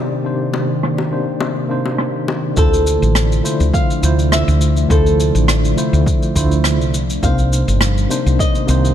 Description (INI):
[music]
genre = sunset chillout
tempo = 103 BPM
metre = 4/4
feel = swing 54% on 16ths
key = D phrygian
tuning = A4 = 439 Hz
[part]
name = mellow tine electric piano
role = accompaniment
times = 0.0-8.9 s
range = C3 to C5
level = -20 LUFS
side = moving between left 5 dB and right 5 dB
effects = medium tremolo, auto-pan, ping-pong delay
[part]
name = ethereal airy pad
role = sustained chords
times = 0.0-8.9 s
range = C3 to D5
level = -23 LUFS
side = left 1 dB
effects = ensemble chorus, built-in reverb, vintage 12-bit sampler grit
[part]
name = bongos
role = percussion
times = 0.5-2.4 s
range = none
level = -25 LUFS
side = left 4 dB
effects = none
[part]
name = rim click and shaker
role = drums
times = 0.8-8.9 s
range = none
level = -22 LUFS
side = equal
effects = low-pass filter on snare, low-pass filter on perc, low-pass filter on room
[part]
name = flamenco guitar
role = melody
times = 2.6-8.9 s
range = A4 to F5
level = -22 LUFS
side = equal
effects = vintage 12-bit sampler grit, ping-pong delay
[part]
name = woody fretless electric bass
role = bass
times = 2.6-8.9 s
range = G1 to D2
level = -15 LUFS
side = equal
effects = none
[part]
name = electronic kick drum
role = drums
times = 2.6-8.5 s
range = none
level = -17 LUFS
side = equal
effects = overdrive
[sound]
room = moderate concert hall reverb, RT60 2.2 s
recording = dark, warm production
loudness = -13 LUFS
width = side -10 dB against mid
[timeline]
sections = 0.0-2.6 A section; 2.6-8.9 B section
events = none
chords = 0.0 Cm9; 2.6 Dm9; 6.9 Cm9